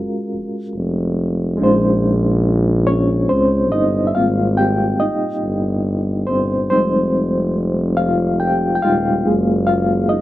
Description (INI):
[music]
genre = slow six-eight R&B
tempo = 47 BPM (dotted quarters)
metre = 6/8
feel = straight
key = Ab major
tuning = A4 = 439 Hz
[part]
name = reed electric piano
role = accompaniment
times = 0.0-10.2 s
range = G3 to G5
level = -18 LUFS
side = equal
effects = fast tremolo
[part]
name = breathy tuba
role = bass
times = 0.3-10.2 s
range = Eb1 to Db2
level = -18 LUFS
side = equal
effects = none
[sound]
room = moderate small room reverb, RT60 0.5 s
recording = band playing live in one room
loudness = -15 LUFS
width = side -15 dB against mid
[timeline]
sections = 0.0-4.2 A section; 4.2-10.2 B section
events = reed electric piano solo 4.2-10.2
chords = 0.0 Gbmaj9; 1.6 Bbm11; 4.2 Abmaj9; 6.7 Fm9; 9.3 Gbmaj9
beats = 0.32 | 1.60 2.87 | 4.15 5.43 | 6.70 7.98 | 9.26